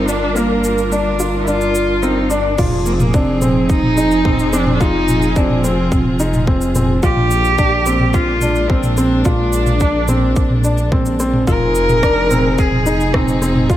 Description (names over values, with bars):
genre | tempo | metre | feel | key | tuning
piano and strings electronica | 108 BPM | 4/4 | straight | F dorian | A4 = 440 Hz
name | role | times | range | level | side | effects
rich cello | melody | 0.0-13.8 s | Bb3 to Bb4 | -18 LUFS | equal | none
warm studio string section | sustained chords | 0.0-13.8 s | F3 to Bb4 | -22 LUFS | equal | sidechain pumping
felt-muted upright piano | riff | 0.0-13.8 s | Bb3 to F4 | -19 LUFS | equal | digital delay
dark detuned saw bass | bass | 0.0-13.8 s | F1 to Bb1 | -20 LUFS | equal | sidechain pumping
organic electronic drum kit | drums | 0.1-13.8 s | crash cymbal, rim click, shaker, toms | -21 LUFS | equal | overdrive
electronic kick drum | drums | 2.6-13.8 s | none | -17 LUFS | equal | overdrive
room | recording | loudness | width
light reverb, digital ambience | none | -13 LUFS | side -12 dB against mid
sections
0.0-2.6 A section; 2.6-13.8 B section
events
build-up 0.0-2.6; drop 2.6-13.8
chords
0.0 Gm7; 2.6 Fm7; 7.0 Bb9; 11.5 Fm7